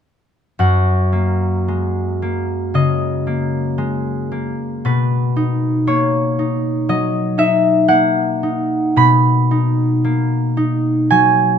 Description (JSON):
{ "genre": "classical, solo harp piece", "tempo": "53-61 BPM", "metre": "4/4", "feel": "rubato", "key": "F# major", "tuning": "A4 = 440 Hz", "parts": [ { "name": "concert harp", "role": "solo", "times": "0.6-11.6 s", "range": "F#2 to B5", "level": "-14 LUFS", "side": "equal", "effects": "none" } ], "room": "little or no reverb", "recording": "close, detailed microphones", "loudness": "-14 LUFS", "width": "side -8 dB against mid", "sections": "0.6-11.6 A section", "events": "none", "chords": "0.6 F#69; 4.8 Bmaj7", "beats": "| 0.59 1.69 2.76 3.79 | 4.84 5.88 6.90 7.89 | 8.98 10.03 11.10" }